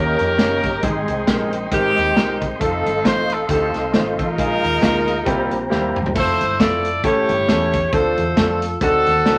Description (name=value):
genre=uptempo gospel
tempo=135 BPM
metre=4/4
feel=swing 56% on 8ths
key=F major from 6.2 s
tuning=A4 = 440 Hz
part: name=warm horn section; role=melody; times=0.0-9.4 s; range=C4 to D5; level=-22 LUFS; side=equal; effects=none
part: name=clear upright piano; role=accompaniment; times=0.0-9.4 s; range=Ab2 to Db5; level=-25 LUFS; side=equal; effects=none
part: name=mellow tonewheel organ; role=sustained chords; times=0.0-6.1 s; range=Ab3 to C6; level=-28 LUFS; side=equal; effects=slow rotary speaker, chorus vibrato
part: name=woody fretless electric bass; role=bass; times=0.0-9.4 s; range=Eb1 to F2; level=-29 LUFS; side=equal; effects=none
part: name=natural country drum kit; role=drums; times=0.2-9.4 s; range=crash cymbal, hi-hat, kick drum, snare drum, toms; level=-24 LUFS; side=equal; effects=none
room=wet studio reverb, RT60 0.8 s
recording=vinyl crackle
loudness=-18 LUFS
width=mono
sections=0.0-6.2 A section; 6.2-9.4 A section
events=drum fill 5.7-6.2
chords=0.0 Eb7; 0.8 Abmaj7; 2.6 F7; 4.4 Bb7sus4; 5.3 C7; 6.2 Fmaj7; 7.0 A7; 7.9 Dm7; 8.8 D7b9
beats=0.39 | 0.83 1.28 1.72 2.16 | 2.61 3.05 3.49 3.94 | 4.38 4.82 5.27 5.71 | 6.16 6.60 7.04 7.49 | 7.93 8.37 8.82 9.26